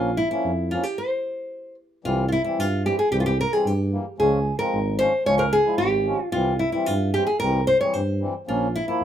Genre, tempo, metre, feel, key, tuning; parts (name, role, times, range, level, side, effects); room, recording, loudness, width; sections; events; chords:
klezmer; 112 BPM; 2/4; straight; C phrygian dominant; A4 = 442 Hz
nylon-string guitar; melody; 0.0-9.0 s; E4 to Db5; -22 LUFS; equal
mellow accordion; accompaniment; 0.0-9.0 s; E3 to E4; -28 LUFS; left 1 dB
mellow tuba; bass; 0.0-9.0 s; Ab1 to G2; -25 LUFS; equal
light reverb; minimal, uncompressed stereo recording; -20 LUFS; side -10 dB against mid
0.0-2.0 A section; 2.0-9.0 A section
stop 1.0-2.0
0.0 Bbm; 1.0 N.C.; 2.0 C; 4.2 Db; 6.3 C; 8.5 Bbm